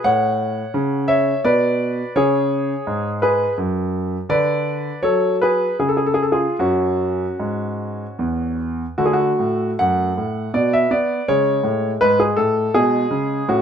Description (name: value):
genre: classical, baroque-style suite movement for grand piano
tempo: 72-87 BPM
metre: 3/4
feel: rubato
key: F# minor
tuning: A4 = 440 Hz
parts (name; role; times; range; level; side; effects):
- clear concert grand piano; solo; 0.0-13.6 s; E2 to F#5; -17 LUFS; equal; none
room: moderate large studio reverb, RT60 0.9 s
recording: minimal, uncompressed stereo recording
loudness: -17 LUFS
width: side -8 dB against mid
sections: 0.0-9.0 A section; 9.0-13.6 A section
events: none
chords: 0.1 F#m/A; 1.5 N.C.; 2.2 C#5; 3.6 N.C.; 4.3 Bm/D; 5.8 C#; 6.6 F#5; 9.0 D; 10.5 N.C.; 11.3 C#5; 12.7 C#5/B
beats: | 0.06 0.76 1.46 | 2.16 2.86 3.58 | 4.30 5.03 5.80 | 6.60 7.40 8.20 | 8.99 9.79 10.54 | 11.28 12.01 12.74 | 13.48